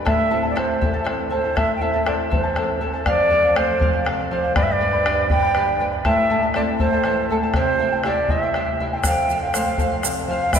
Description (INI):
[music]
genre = andean folk, Andean ensemble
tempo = 80 BPM (dotted quarters)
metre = 6/8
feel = straight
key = unclear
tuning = A4 = 444 Hz
[part]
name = charango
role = accompaniment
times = 0.0-10.6 s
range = E4 to B5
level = -26 LUFS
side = left 2 dB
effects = none
[part]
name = mellow quena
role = melody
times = 0.1-10.6 s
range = A4 to G5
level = -20 LUFS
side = right 2 dB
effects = none
[part]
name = nylon-string guitar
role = accompaniment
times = 0.1-10.6 s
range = E2 to A4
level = -26 LUFS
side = left 1 dB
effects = none
[part]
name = bombo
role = percussion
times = 0.1-10.6 s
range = none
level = -24 LUFS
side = left 1 dB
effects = none
[part]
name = tube shaker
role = percussion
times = 9.0-10.6 s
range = none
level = -28 LUFS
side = right 6 dB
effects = none
[sound]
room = wet cathedral reverb, RT60 6.4 s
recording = recorded in a church or concert hall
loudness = -17 LUFS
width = side -7 dB against mid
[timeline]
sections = 0.0-3.1 A section; 3.1-10.6 A section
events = none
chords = 0.1 Am; 3.1 F; 4.6 G; 6.1 Am; 7.5 C; 9.0 F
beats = | 0.06 0.81 | 1.55 2.31 | 3.06 3.81 | 4.55 5.30 | 6.05 6.80 | 7.55 8.30 | 9.04 9.79 | 10.54